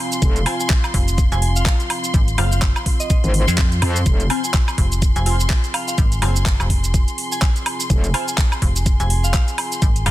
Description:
bass house; 125 BPM; 4/4; swing 58% on 16ths; F minor; A4 = 440 Hz
soft synth bell; melody; 0.0-10.1 s; Eb5 to Ab5; -30 LUFS; right 2 dB; chorus, tape echo
dark analog pad; sustained chords; 0.0-10.1 s; C4 to Ab5; -31 LUFS; right 1 dB; chorus, sidechain pumping
dark studio string section; texture; 0.0-10.1 s; C6; -30 LUFS; left 2 dB; sidechain pumping
garage drum kit; drums; 0.1-10.1 s; handclaps, hi-hat, shaker, woodblock; -24 LUFS; right 1 dB
metallic wobble bass; bass; 0.2-4.3, 7.9-8.1 s; F1 to F2; -18 LUFS; equal; chorus, overdrive, sidechain pumping
electronic kick drum; drums; 0.2-9.9 s; -17 LUFS; equal
band-passed chord stab; stabs; 0.5-10.1 s; C4 to F5; -28 LUFS; left 4 dB; phaser, analog chorus, sidechain pumping, tape echo
metallic FM bass; bass; 0.9-10.1 s; F1 to F2; -19 LUFS; equal; overdrive, sidechain pumping
digital ambience; dense, heavily limited modern master; -16 LUFS; side -15 dB against mid
0.0-10.1 A section
0.0 F5

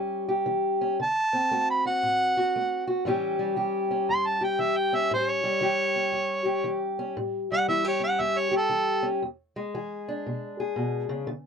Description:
acoustic country blues, solo or duo; 116 BPM; 4/4; swing 64% on 8ths; A mixolydian; A4 = 438 Hz
fingerpicked steel-string acoustic guitar; accompaniment; 0.0-11.5 s; E2 to G#4; -27 LUFS; left 1 dB
mellow harmonica; melody; 1.0-9.1 s; A4 to C6; -24 LUFS; right 2 dB
light reverb; dry, close 1970s-style studio recording; -24 LUFS; side -6 dB against mid
0.0-11.5 A section
0.0 A7 (rootless); 1.0 D7; 3.1 A7; 9.2 E7

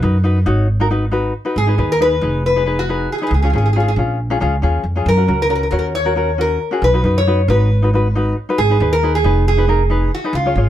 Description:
calypso; 137 BPM; 4/4; straight; A4 = 440 Hz
metal-body resonator slide guitar; melody; 0.0-10.7 s; E#4 to C#5; -18 LUFS; equal
tenor ukulele; accompaniment; 0.0-10.7 s; C#4 to C#5; -20 LUFS; left 2 dB
upright bass; bass; 0.0-10.7 s; E#1 to F#2; -16 LUFS; equal
light reverb; dark, warm production; -14 LUFS; side -11 dB against mid
0.0-10.7 A section
0.0 B; 1.6 G#m; 3.3 C#; 5.1 F#; 6.8 B; 8.6 G#m

